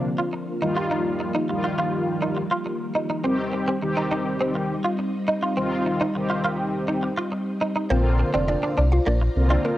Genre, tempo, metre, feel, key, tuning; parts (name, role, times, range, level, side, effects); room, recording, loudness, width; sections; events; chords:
pop; 103 BPM; 4/4; straight; C minor; A4 = 440 Hz
mellow synth brass; accompaniment; 0.0-9.8 s; D3 to G4; -26 LUFS; left 1 dB; chorus, cassette tape
ensemble organ-string; sustained chords; 0.0-9.8 s; D3 to Bb5; -28 LUFS; equal; ensemble chorus, cassette tape
direct-recorded clean electric guitar; riff; 0.2-9.7 s; Bb3 to F4; -26 LUFS; right 1 dB; ensemble chorus, cassette tape
mallet-like synth pluck; melody; 7.9-9.8 s; Bb3 to F5; -26 LUFS; equal; chorus, phaser, tape echo
sub bass with octave; bass; 7.9-9.6 s; F1 to C2; -20 LUFS; equal
moderate spring reverb, RT60 1.9 s; home recording on cassette; -21 LUFS; side -14 dB against mid
0.0-7.9 A section; 7.9-9.8 B section
build-up 0.0-7.9; drop 7.9-9.8
0.0 Bbadd9; 0.6 Ebadd9; 3.2 Cm; 7.9 Bbadd9